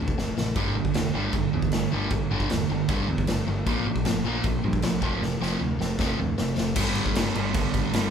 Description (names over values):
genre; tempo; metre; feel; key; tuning
punk rock; 155 BPM; 4/4; straight; unclear; A4 = 444 Hz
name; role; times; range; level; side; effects
sludgy distorted guitar; riff; 0.0-8.1 s; F2 to Bb3; -29 LUFS; left 4 dB; overdrive
growling picked electric bass; bass; 0.0-8.1 s; E1 to G2; -31 LUFS; equal; overdrive
raw garage drum kit; drums; 0.1-8.0 s; crash cymbal, kick drum, snare drum; -27 LUFS; equal; none
cranked stack guitar; riff; 0.6-8.1 s; F2 to Bb3; -29 LUFS; right 10 dB; overdrive
room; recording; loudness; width
light reverb; band playing live in one room; -23 LUFS; side -7 dB against mid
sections
0.0-6.8 A section; 6.8-8.1 B section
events
drum fill 0.2-0.6, 5.2-6.8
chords
0.0 F; 0.6 G5; 3.7 Bb5; 5.0 F5; 6.8 G5